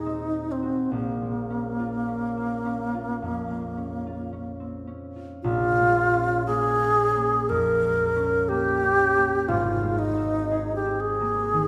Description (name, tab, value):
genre	classical, impressionist duo for alto flute and harp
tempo	51-61 BPM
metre	4/4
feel	rubato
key	Bb dorian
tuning	A4 = 440 Hz
part	bright wooden-headed alto flute	melody	0.0-11.7 s	Bb3 to Bb4	-26 LUFS	equal	none
part	concert harp	accompaniment	0.0-11.7 s	Ab1 to Ab4	-32 LUFS	equal	none
room	wet recital hall reverb, RT60 1.8 s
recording	recorded in a church or concert hall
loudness	-25 LUFS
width	mono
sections	0.0-5.4 A section; 5.4-11.7 A section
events	none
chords	0.0 Ebm6; 0.9 Bbm9; 5.4 Bbm7; 9.5 Abadd9